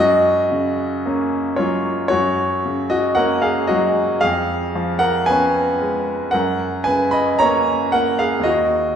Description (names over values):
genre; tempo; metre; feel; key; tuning
classical, romantic nocturne for solo piano; 56 BPM; 4/4; rubato; F# major; A4 = 440 Hz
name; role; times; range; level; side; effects
clear grand piano; solo; 0.0-9.0 s; D#2 to B5; -16 LUFS; equal; none
room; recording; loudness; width
wet recital hall reverb, RT60 1.7 s; recorded in a church or concert hall; -16 LUFS; side -8 dB against mid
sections
0.0-9.0 A section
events
none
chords
0.0 F#; 4.2 C#7/E#; 6.3 F#